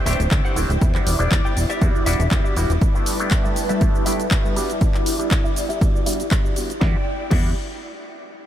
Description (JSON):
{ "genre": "filtered disco house", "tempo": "120 BPM", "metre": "4/4", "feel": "swing 54% on 16ths", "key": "E minor", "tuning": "A4 = 439 Hz", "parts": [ { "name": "auto-wah clav", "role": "accompaniment", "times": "0.0-7.5 s", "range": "G3 to F#5", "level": "-28 LUFS", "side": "equal", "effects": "phaser, sidechain pumping, low-pass filter" }, { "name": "phased string machine", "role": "sustained chords", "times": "0.0-7.0 s", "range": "G3 to A5", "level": "-27 LUFS", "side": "equal", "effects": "ensemble chorus, phaser, vintage 12-bit sampler grit, sidechain pumping, low-pass filter" }, { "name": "plucky analog bass", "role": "bass", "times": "0.0-2.8, 6.8-7.5 s", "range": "D1 to E2", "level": "-22 LUFS", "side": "equal", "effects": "sidechain pumping, low-pass filter" }, { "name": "clean electric guitar", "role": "riff", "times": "0.1-7.5 s", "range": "G3 to G5", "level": "-31 LUFS", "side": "left 2 dB", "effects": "ensemble chorus, sidechain pumping, low-pass filter" }, { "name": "house drum kit", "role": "drums", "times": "0.1-7.4 s", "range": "cabasa, crash cymbal, handclaps, hi-hat, snare drum", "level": "-28 LUFS", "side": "equal", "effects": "sidechain pumping on hats, sidechain pumping on perc, sidechain pumping on cymbals" }, { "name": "electronic kick drum", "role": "drums", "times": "0.3-7.4 s", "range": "none", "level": "-20 LUFS", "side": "equal", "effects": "none" }, { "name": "analog synth brass", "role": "melody", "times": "1.2-1.6 s", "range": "D5", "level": "-36 LUFS", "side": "left 4 dB", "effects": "none" } ], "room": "light reverb, digital ambience", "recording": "none", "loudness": "-17 LUFS", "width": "side -11 dB against mid", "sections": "0.0-6.8 A section; 6.8-8.5 B section", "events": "filter sweep 0.0-6.8", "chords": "0.0 D9sus4; 0.8 Em7; 2.8 G69; 4.6 Em7" }